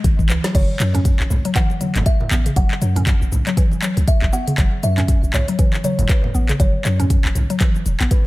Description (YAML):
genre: afro house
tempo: 119 BPM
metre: 4/4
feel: swing 58% on 16ths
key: F# minor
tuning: A4 = 440 Hz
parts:
  - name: warm 808-style bass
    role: bass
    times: 0.0-8.1 s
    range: E1 to F#2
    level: -19 LUFS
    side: equal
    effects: sidechain pumping
  - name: afro-pop drum kit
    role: drums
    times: 0.0-8.2 s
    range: crash cymbal, handclaps, hi-hat, shaker, snare drum, toms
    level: -26 LUFS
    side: left 1 dB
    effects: small room ambience
  - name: electronic kick drum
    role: drums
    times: 0.0-8.2 s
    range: none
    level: -16 LUFS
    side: equal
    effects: small room ambience
  - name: mallet-like synth pluck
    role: arpeggios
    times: 0.3-8.1 s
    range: C#3 to C#4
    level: -24 LUFS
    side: left 1 dB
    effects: chorus, sidechain pumping, digital delay
  - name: kalimba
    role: melody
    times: 0.6-8.3 s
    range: B4 to F#5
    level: -28 LUFS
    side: equal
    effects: digital delay
  - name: congas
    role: percussion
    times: 0.6-8.1 s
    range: none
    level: -26 LUFS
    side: right 2 dB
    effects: none
room: digital ambience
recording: none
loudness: -15 LUFS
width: side -19 dB against mid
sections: 0.0-8.3 A section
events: drum fill 0.0-0.5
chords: 0.0 C#m; 0.5 F#5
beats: 0.04 | 0.55 1.05 1.56 2.06 | 2.56 3.07 3.57 4.08 | 4.58 5.09 5.59 6.09 | 6.60 7.10 7.61 8.11